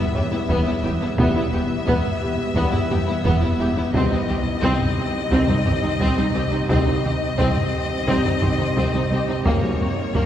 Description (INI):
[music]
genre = cinematic, hybrid orchestral and electronic film score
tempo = 87 BPM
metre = 4/4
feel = straight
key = unclear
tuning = A4 = 439 Hz
[part]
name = rich chamber violin section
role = melody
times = 0.0-10.3 s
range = C#5 to E5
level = -28 LUFS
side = left 4 dB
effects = none
[part]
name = rich symphonic violin section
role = second line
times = 0.0-10.3 s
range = A#3 to G4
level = -29 LUFS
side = left 2 dB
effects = none
[part]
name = rich symphonic viola section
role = accompaniment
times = 0.0-10.3 s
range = A#3 to C4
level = -28 LUFS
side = equal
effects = none
[part]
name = dark French horn section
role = sustained chords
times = 0.0-9.7 s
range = C#3 to E4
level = -31 LUFS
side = left 1 dB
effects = none
[part]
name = metallic inharmonic drone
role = sustained chords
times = 0.0-10.3 s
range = C#3 to B4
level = -29 LUFS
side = equal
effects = chorus, built-in reverb
[part]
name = thumb-piano-like synth pluck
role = arpeggios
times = 0.0-10.3 s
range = C3 to F#4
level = -31 LUFS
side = equal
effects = none
[part]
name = rich symphonic cello section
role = bass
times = 0.0-10.2 s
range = C2 to F#2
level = -27 LUFS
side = right 1 dB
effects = none
[part]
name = felt-muted upright piano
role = texture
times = 0.0-10.3 s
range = C4 to C6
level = -36 LUFS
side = equal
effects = none
[part]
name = rich symphonic double bass section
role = bass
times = 0.1-10.2 s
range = E1 to C2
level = -27 LUFS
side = right 1 dB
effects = none
[part]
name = taiko ensemble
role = drums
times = 0.1-10.3 s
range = none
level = -25 LUFS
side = equal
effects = none
[sound]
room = wet cathedral reverb, RT60 5.1 s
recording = recorded in a church or concert hall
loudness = -18 LUFS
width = side -10 dB against mid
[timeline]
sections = 0.0-10.3 A section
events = none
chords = 0.0 Em; 3.9 Cm; 9.5 F#